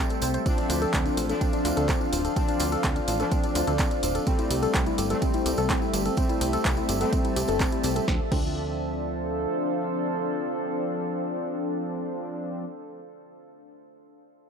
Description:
melodic techno; 126 BPM; 4/4; straight; D minor; A4 = 439 Hz
deep dark ambient pad; sustained chords; 0.0-12.4 s; C4 to A5; -32 LUFS; right 2 dB; chorus, built-in reverb, sidechain pumping
woody wave-folded pluck; arpeggios; 0.0-8.4 s; C4 to C5; -30 LUFS; left 1 dB; chorus, sidechain pumping, digital delay
analog synth brass; stabs; 0.0-12.6 s; F3 to D4; -30 LUFS; left 2 dB; chorus, sidechain pumping, digital delay
plucky analog bass; bass; 0.0-9.5 s; D1 to D2; -30 LUFS; right 1 dB; sidechain pumping
punchy analog drum machine; drums; 0.1-8.5 s; crash cymbal, handclaps, hi-hat, ride cymbal, snare drum; -33 LUFS; equal
tambourine; percussion; 0.1-8.1 s; -39 LUFS; right 6 dB
electronic kick drum; drums; 0.5-8.5 s; -27 LUFS; right 1 dB
light reverb; -24 LUFS; side -6 dB against mid
0.0-8.1 A section; 8.1-11.9 B section
drop 0.0-8.1
0.5 Dm7; 4.3 Am7; 8.1 Dm7

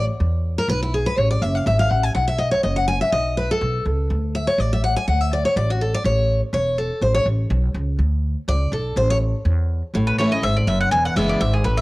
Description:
bluegrass; 246 BPM; 4/4; straight; A major; A4 = 440 Hz
picked steel-string acoustic guitar; accompaniment; 0.0-11.8 s; E2 to G#5; -21 LUFS; left 1 dB; cassette tape
upright bass; bass; 0.0-11.8 s; E1 to E2; -21 LUFS; equal
mandolin; melody; 10.1-11.8 s; G#4 to G#5; -21 LUFS; equal; cassette tape
little or no reverb; home recording on cassette; -18 LUFS; side -20 dB against mid
0.0-2.2 A section; 2.2-9.9 A section; 9.9-11.8 B section
steel-string acoustic guitar solo 0.0-9.9
0.2 E5; 1.2 F#m9; 2.2 B; 4.1 D5; 6.0 A; 8.0 D5; 9.0 A5; 9.9 A; 10.9 E

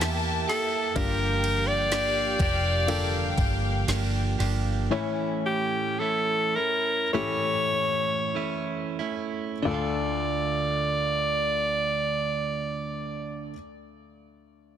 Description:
pop ballad; 44-63 BPM; 4/4; straight; D harmonic minor; A4 = 438 Hz
rich studio violin section; second line; 0.0-0.9 s; Bb3 to G5; -40 LUFS; right 1 dB; ping-pong delay
dark baby grand piano; accompaniment; 0.0-14.8 s; D2 to C#5; -33 LUFS; left 5 dB
warm studio string section; sustained chords; 0.0-4.9 s; G4 to A5; -32 LUFS; left 3 dB
direct-recorded clean electric guitar; arpeggios; 0.0-13.7 s; G2 to G4; -32 LUFS; right 8 dB
vintage muted fingered electric bass; bass; 0.0-4.9 s; F1 to E2; -28 LUFS; equal
smooth R&B drum kit; drums; 0.0-4.6 s; kick drum, ride cymbal, snare drum; -32 LUFS; equal
bright alto saxophone; melody; 0.5-13.5 s; G4 to D5; -27 LUFS; equal
light reverb, studio ambience; dense, heavily limited modern master; -24 LUFS; side -9 dB against mid
0.0-9.7 A section; 9.7-14.8 B section
slowing down 1.0-9.7
0.0 Edim; 1.0 Gm7; 4.9 A; 9.7 Dm

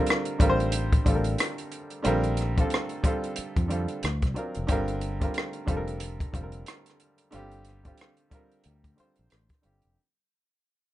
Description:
R&B, neo-soul; 91 BPM; 4/4; swing 60% on 16ths; A4 = 437 Hz
bright baby grand piano; accompaniment; 0.0-10.0 s; D3 to C5; -29 LUFS; right 1 dB
compact cocktail drum kit; drums; 0.1-9.9 s; hi-hat, kick drum, rim click; -26 LUFS; equal
fretless electric bass; bass; 0.4-10.0 s; E#1 to F2; -29 LUFS; equal; ensemble chorus
little or no reverb; rough home demo mix, nothing above 10.3 kHz; -25 LUFS; side -14 dB against mid
0.0-10.0 A section
fade-out 0.0-10.0
0.0 Bbmaj9; 4.0 D7alt; 4.7 Gm11

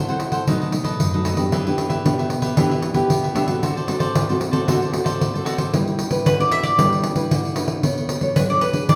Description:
samba and choro; 114 BPM; 4/4; straight; G major; A4 = 439 Hz
cavaquinho; accompaniment; 0.0-5.7 s; D4 to F#5; -30 LUFS; equal
nylon-string guitar; accompaniment; 0.0-9.0 s; F#2 to C#5; -25 LUFS; equal
pandeiro; percussion; 0.1-9.0 s; -24 LUFS; equal
bowl-back mandolin; melody; 6.3-9.0 s; B4 to E5; -22 LUFS; equal
wet recital hall reverb, RT60 1.6 s; recorded in a church or concert hall; -20 LUFS; mono
0.0-5.7 A section; 5.7-9.0 B section
0.5 B7; 1.5 Em7; 3.6 D7; 5.7 G6; 7.8 Bm9

